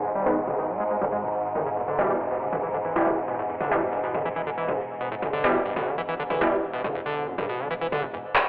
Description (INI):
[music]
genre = driving peak-time techno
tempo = 139 BPM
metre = 4/4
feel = straight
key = unclear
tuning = A4 = 441 Hz
[part]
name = overdriven acid bass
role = riff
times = 0.0-8.2 s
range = E1 to G#3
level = -30 LUFS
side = equal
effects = distortion, wide subtle chorus, cassette tape, analog delay
[part]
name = growling FM bass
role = bass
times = 0.0-8.2 s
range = E1 to G#1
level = -42 LUFS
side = equal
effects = tube saturation
[part]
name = swarming drone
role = drone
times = 0.0-8.2 s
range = G#2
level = -29 LUFS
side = equal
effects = built-in reverb
[part]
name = rave stab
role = stabs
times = 0.3-6.6 s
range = B2 to B3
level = -26 LUFS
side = equal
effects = chorus, built-in reverb, analog delay
[part]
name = techno drum kit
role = drums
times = 0.5-8.4 s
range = handclaps, toms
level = -28 LUFS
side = equal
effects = none
[sound]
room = wet digital room reverb, RT60 1.1 s, digital ambience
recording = dry, gritty hardware recording, low-pass filter, telephone sound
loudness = -24 LUFS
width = side -24 dB against mid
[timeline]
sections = 0.0-8.5 A section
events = filter sweep on acid bass 0.0-8.5; filter sweep 0.0-8.5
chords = 0.0 G#m; 1.8 Em